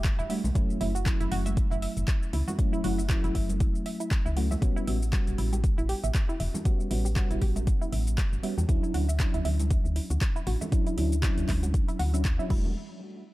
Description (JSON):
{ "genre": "deep house", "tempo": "118 BPM", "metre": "4/4", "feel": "swing 57% on 16ths", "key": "unclear", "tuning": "A4 = 440 Hz", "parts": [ { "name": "mellow FM electric piano", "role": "stabs", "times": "0.0-12.7 s", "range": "F#3 to F#4", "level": "-33 LUFS", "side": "equal", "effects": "chorus, phaser, sidechain pumping, low-pass filter, tape echo" }, { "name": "woody FM bass", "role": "bass", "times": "0.0-12.7 s", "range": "D1 to E2", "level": "-29 LUFS", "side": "equal", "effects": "sidechain pumping" }, { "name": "deep house drum kit", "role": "drums", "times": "0.0-12.6 s", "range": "crash cymbal, handclaps, hi-hat, shaker", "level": "-38 LUFS", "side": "left 1 dB", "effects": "overdrive" }, { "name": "electronic kick drum", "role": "drums", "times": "0.0-12.6 s", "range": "none", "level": "-26 LUFS", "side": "equal", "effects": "overdrive" }, { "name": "analog pluck", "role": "arpeggios", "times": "0.2-12.7 s", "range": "E4 to E5", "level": "-38 LUFS", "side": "right 3 dB", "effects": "chorus, phaser, sidechain pumping, tape echo" }, { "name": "congas", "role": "percussion", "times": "0.4-12.7 s", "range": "none", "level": "-38 LUFS", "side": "equal", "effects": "none" } ], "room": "little or no reverb", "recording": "dark, warm production", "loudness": "-25 LUFS", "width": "side -18 dB against mid", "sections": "0.0-12.8 A section", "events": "filter sweep on FM bass 0.0-12.8; filter sweep on synth arpeggio sound 0.0-12.8", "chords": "0.0 Em11; 0.6 F#m7; 4.6 A13; 8.7 Dmaj9; 12.5 Em11; 12.8 N.C.", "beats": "0.04 | 0.55 1.06 1.57 2.08 | 2.59 3.10 3.60 4.11 | 4.62 5.13 5.64 6.15 | 6.66 7.16 7.67 8.18 | 8.69 9.20 9.71 10.21 | 10.72 11.23 11.74 12.25" }